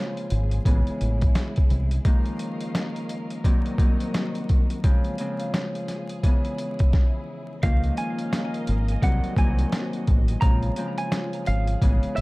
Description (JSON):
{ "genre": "hip hop, boom-bap hip-hop", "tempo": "86 BPM", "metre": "4/4", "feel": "swing 61% on 16ths", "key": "Db major", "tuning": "A4 = 440 Hz", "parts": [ { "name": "Celtic harp", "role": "accompaniment", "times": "0.0-12.2 s", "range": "C2 to C4", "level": "-29 LUFS", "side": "left 1 dB", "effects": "cassette tape, high-pass filter, low-pass filter" }, { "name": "muted studio string section", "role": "sustained chords", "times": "0.0-12.2 s", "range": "E3 to F5", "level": "-39 LUFS", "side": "right 2 dB", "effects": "high-pass filter, low-pass filter" }, { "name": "boom bap sampler-style drum kit", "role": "drums", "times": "0.2-12.2 s", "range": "hi-hat, kick drum, snare drum", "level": "-22 LUFS", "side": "equal", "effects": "none" }, { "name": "deep dub fingered electric bass", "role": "bass", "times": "0.3-2.0, 7.6-12.2 s", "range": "Ab1 to Db2", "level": "-24 LUFS", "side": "equal", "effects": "none" }, { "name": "semi-hollow electric guitar", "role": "melody", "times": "7.6-12.2 s", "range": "E5 to Bb5", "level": "-32 LUFS", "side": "right 2 dB", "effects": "high-pass filter, low-pass filter, ping-pong delay" } ], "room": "digital ambience", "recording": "dark, warm production, vinyl crackle", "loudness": "-21 LUFS", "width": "side -23 dB against mid", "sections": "0.0-7.6 A section; 7.6-12.2 B section", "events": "stop 6.9-7.6", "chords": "0.0 Bbm7; 0.7 Amaj7; 2.1 Db69; 3.4 Cm7b5; 4.8 Bbm7; 6.2 Dbm7; 7.6 Db69; 9.0 Ab9/C; 10.4 Bbm7" }